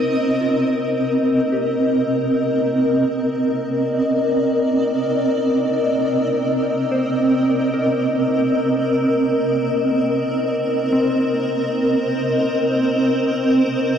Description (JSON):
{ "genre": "ambient", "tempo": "free time", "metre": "none", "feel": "none", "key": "C minor", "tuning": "A4 = 441 Hz", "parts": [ { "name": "granular cloud pad", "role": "sustained chords", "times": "0.0-14.0 s", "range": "C4 to Eb5", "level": "-17 LUFS", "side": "equal", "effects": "built-in reverb" }, { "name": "soft synth bell", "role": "arpeggios", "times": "0.0-14.0 s", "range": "C4 to C5", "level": "-29 LUFS", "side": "left 1 dB", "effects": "none" } ], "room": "wet cathedral reverb, RT60 4.8 s", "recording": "dark, warm production", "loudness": "-16 LUFS", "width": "side -8 dB against mid", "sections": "0.1-14.0 A section", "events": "none", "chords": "0.1 Cm9" }